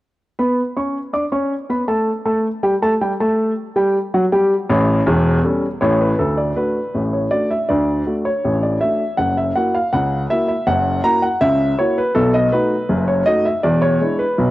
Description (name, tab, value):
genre	ragtime piano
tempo	80 BPM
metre	2/4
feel	straight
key	D major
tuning	A4 = 440 Hz
part	warm upright piano	solo	0.4-14.5 s	E1 to D6	-15 LUFS	equal	cassette tape
room	light reverb, small room ambience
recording	home recording on cassette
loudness	-15 LUFS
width	side -17 dB against mid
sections	0.2-6.2 A section; 6.2-14.5 B section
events	none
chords	0.2 N.C.; 3.2 A7; 6.2 D; 9.2 F#7; 12.2 B7; 13.7 E7